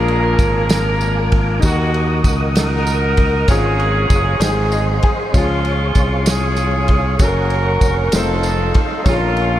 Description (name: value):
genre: slow gospel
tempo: 65 BPM (dotted quarters)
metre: 6/8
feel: straight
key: Db major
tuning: A4 = 440 Hz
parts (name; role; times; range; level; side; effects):
- warm horn section; melody; 0.0-9.6 s; Ab3 to Bb4; -20 LUFS; right 1 dB; analog delay
- bright baby grand piano; accompaniment; 0.0-9.6 s; Ab2 to Ab5; -23 LUFS; left 2 dB; none
- mellow tonewheel organ; sustained chords; 0.0-9.6 s; Ab4 to Eb6; -24 LUFS; equal; fast rotary speaker, chorus vibrato
- modern bright fingered electric bass; bass; 0.0-9.6 s; F1 to Eb2; -18 LUFS; equal; none
- warm soul drum kit; drums; 0.1-9.5 s; kick drum, ride cymbal, snare drum; -19 LUFS; equal; none
- tambourine; percussion; 0.4-9.3 s; none; -32 LUFS; right 5 dB; none
room: moderate huge ambient reverb, RT60 6.9 s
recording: dreamy mix soaked in reverb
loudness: -13 LUFS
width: side -12 dB against mid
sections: 0.0-9.6 A section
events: grand piano fill 4.4-5.3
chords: 0.0 Bb7; 1.6 Ebm; 3.5 Db/Ab; 4.4 Ab; 5.3 Db; 7.2 Gb; 8.1 F7; 9.1 Bbm